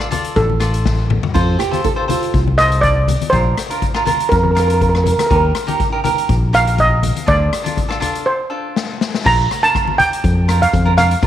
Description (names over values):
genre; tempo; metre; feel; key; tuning
calypso; 122 BPM; 4/4; straight; Bb major; A4 = 441 Hz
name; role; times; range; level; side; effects
steel pan; melody; 0.0-11.3 s; A4 to Bb5; -17 LUFS; right 1 dB; none
cavaquinho; accompaniment; 0.0-11.3 s; D4 to D5; -22 LUFS; right 3 dB; none
street-band drum kit; drums; 0.0-11.3 s; crash cymbal, hi-hat, kick drum, rim click, snare drum, toms; -21 LUFS; left 2 dB; none
congas; percussion; 0.1-11.1 s; none; -25 LUFS; left 8 dB; none
fingered electric bass; bass; 0.4-11.3 s; A1 to F2; -16 LUFS; equal; none
nylon-string guitar; second line; 1.3-2.4 s; F4 to A4; -22 LUFS; right 8 dB; none
room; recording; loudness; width
light reverb; 1960s-style stereo with parts hard left and right; -13 LUFS; side -11 dB against mid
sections
0.0-9.3 A section; 9.3-11.3 B section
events
steel pan solo 0.0-9.3; drum fill 0.9-1.4, 8.8-9.3; break 8.3-9.3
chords
0.0 Dm; 1.4 F; 3.3 Bbadd9; 5.3 Eb; 7.3 Dm; 9.3 Bb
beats
0.36 0.86 | 1.35 1.84 2.34 2.83 | 3.33 3.82 4.32 4.81 | 5.30 5.80 6.29 6.79 | 7.28 7.77 8.27 8.76 | 9.25 9.74 10.24 10.73 | 11.22